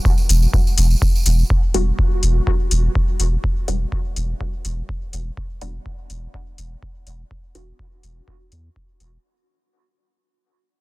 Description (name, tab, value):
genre	dub techno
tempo	124 BPM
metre	4/4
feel	straight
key	E minor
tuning	A4 = 440 Hz
part	filtered dub chord stab	stabs	0.0-7.8 s	G3 to F#4	-29 LUFS	left 2 dB	phaser, sidechain pumping, dub echo
part	electronic kick drum	drums	0.1-8.9 s	none	-20 LUFS	equal	none
part	tambourine	percussion	0.1-1.5 s	none	-29 LUFS	right 3 dB	none
part	pure sine sub bass	bass	0.3-9.2 s	E1 to E2	-18 LUFS	equal	sidechain pumping
part	electronic hi-hat	drums	0.3-9.1 s	none	-23 LUFS	left 3 dB	none
room	digital ambience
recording	dense, heavily limited modern master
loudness	-16 LUFS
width	side -21 dB against mid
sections	0.0-9.2 A section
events	fade-out 0.0-9.2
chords	0.0 Em9